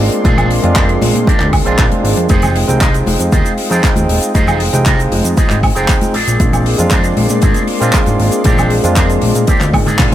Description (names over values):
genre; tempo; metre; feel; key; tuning
nu-disco, nu disco; 117 BPM; 4/4; straight; unclear; A4 = 441 Hz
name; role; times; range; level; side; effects
barky tine electric piano; accompaniment; 0.0-10.1 s; Ab3 to G5; -18 LUFS; right 1 dB; sidechain pumping, dub echo
lush unison pad; sustained chords; 0.0-10.1 s; Ab3 to C6; -21 LUFS; left 1 dB; chorus, sidechain pumping
electric guitar with an envelope filter; riff; 0.0-10.1 s; C4 to Ab5; -21 LUFS; right 2 dB; lush chorus, dub echo
fat analog bass; bass; 0.0-10.1 s; Eb1 to Bb2; -16 LUFS; equal; none
tight funk drum kit; drums; 0.1-10.1 s; handclaps, hi-hat, shaker, toms, woodblock; -19 LUFS; equal; studio reverb
electronic kick drum; drums; 0.2-10.1 s; none; -13 LUFS; equal; overdrive, studio reverb
congas; percussion; 0.2-10.1 s; none; -22 LUFS; left 2 dB; none
room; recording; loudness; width
studio reverb; none; -10 LUFS; side -12 dB against mid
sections
0.0-10.1 A section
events
drum fill 9.7-10.1; clean electric guitar fill 9.7-10.1; band accent 10.0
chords
0.0 Bb9; 2.3 Fm7; 6.1 Bb9